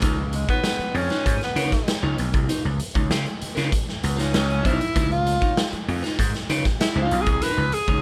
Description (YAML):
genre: funk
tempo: 97 BPM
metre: 4/4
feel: straight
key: Db mixolydian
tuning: A4 = 441 Hz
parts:
  - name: clean electric guitar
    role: accompaniment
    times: 0.0-8.0 s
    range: Eb4 to Db5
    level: -32 LUFS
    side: equal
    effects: none
  - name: gritty slap bass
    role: bass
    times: 0.0-8.0 s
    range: Cb2 to Db3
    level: -26 LUFS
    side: equal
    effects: overdrive
  - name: raw garage drum kit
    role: drums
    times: 0.0-8.0 s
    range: hi-hat, kick drum, snare drum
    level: -26 LUFS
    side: equal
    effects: none
  - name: warm tenor saxophone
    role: melody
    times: 0.3-8.0 s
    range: Ab3 to Cb5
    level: -27 LUFS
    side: equal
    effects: none
room: light reverb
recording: none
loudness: -23 LUFS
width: mono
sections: 0.0-8.0 A section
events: tenor saxophone solo 0.0-8.0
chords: 0.0 Db9